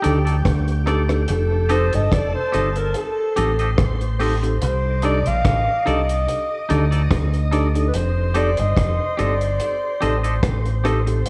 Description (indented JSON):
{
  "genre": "lovers rock reggae",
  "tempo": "72 BPM",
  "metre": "4/4",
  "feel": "swing 54% on 16ths",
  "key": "unclear",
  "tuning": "A4 = 437 Hz",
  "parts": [
    { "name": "breathy alto saxophone", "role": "melody", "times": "0.0-10.4 s", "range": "G4 to F5", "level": "-26 LUFS", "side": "equal", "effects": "tape echo" },
    { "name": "soft string machine", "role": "second line", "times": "0.0-11.3 s", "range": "G4 to Eb6", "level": "-34 LUFS", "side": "equal", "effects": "ensemble chorus" },
    { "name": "mellow tine electric piano", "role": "accompaniment", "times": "0.0-11.2 s", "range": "C4 to A4", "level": "-29 LUFS", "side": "equal", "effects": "tape echo" },
    { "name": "twangy electric guitar", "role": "stabs", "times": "0.0-11.1 s", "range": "Eb4 to Eb5", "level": "-30 LUFS", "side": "equal", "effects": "spring reverb" },
    { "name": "deep reggae drum kit", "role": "drums", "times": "0.0-11.3 s", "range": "hi-hat, kick drum, rim click", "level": "-26 LUFS", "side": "equal", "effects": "gated reverb, tape echo" },
    { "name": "deep dub fingered electric bass", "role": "bass", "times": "0.1-11.2 s", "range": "F1 to D2", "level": "-22 LUFS", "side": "equal", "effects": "none" }
  ],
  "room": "light reverb, small room ambience",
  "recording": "studio reverb",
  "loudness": "-20 LUFS",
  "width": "mono",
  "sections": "0.0-11.3 A section",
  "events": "none",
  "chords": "0.0 Cm69 (rootless); 1.3 F9; 4.6 Cm69; 7.9 F9",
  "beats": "0.46 | 1.29 2.12 2.95 3.78 | 4.61 5.44 6.27 7.11 | 7.94 8.77 9.60 10.43 | 11.26"
}